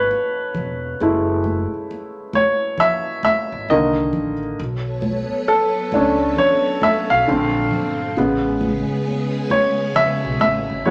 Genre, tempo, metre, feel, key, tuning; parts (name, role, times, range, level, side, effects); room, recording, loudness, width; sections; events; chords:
R&B, neo-soul; 67 BPM; 4/4; swing 60% on 16ths; A4 = 440 Hz
warm upright piano; accompaniment; 0.0-10.9 s; C#3 to E#5; -20 LUFS; equal
upright bass; bass; 0.0-10.9 s; E1 to C#2; -30 LUFS; equal
congas; percussion; 0.1-10.9 s; -30 LUFS; equal
string machine, violins; sustained chords; 4.6-10.9 s; A#2 to C#5; -28 LUFS; equal; ensemble chorus
moderate large studio reverb, RT60 0.7 s; -19 LUFS; mono
0.0-10.9 A section
upright piano solo 0.0-10.9
0.0 F#m9; 3.7 Cm9; 4.6 Bm9; 7.3 A#maj9; 8.2 Amaj9